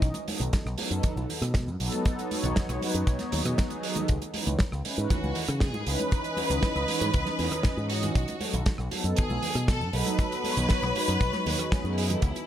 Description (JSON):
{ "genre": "nu-disco, nu disco", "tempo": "118 BPM", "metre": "4/4", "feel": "straight", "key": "unclear", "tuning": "A4 = 440 Hz", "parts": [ { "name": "picked electric bass with an envelope filter", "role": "bass", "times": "0.0-12.3 s", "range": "B1 to C#3", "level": "-30 LUFS", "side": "equal", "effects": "none" }, { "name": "damped 70s drum kit", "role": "drums", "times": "0.0-12.5 s", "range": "hi-hat, rim click, snare drum", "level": "-32 LUFS", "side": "right 3 dB", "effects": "none" }, { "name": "kick drum", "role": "drums", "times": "0.0-12.3 s", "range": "none", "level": "-25 LUFS", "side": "equal", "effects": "none" }, { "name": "maracas and congas", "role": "percussion", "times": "0.0-12.5 s", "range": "none", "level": "-37 LUFS", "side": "right 1 dB", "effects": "none" }, { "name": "warm analog pad", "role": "accompaniment", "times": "0.3-12.2 s", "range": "E3 to D#5", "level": "-32 LUFS", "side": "equal", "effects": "chorus" }, { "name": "clear chamber violin section", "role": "melody", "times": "5.1-12.5 s", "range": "E4 to B4", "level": "-32 LUFS", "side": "left 1 dB", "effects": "tape echo" } ], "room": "small room ambience", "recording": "none", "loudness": "-25 LUFS", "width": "side -11 dB against mid", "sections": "0.0-12.5 A section", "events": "none", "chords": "0.0 B7; 4.1 C#m9; 8.2 B7" }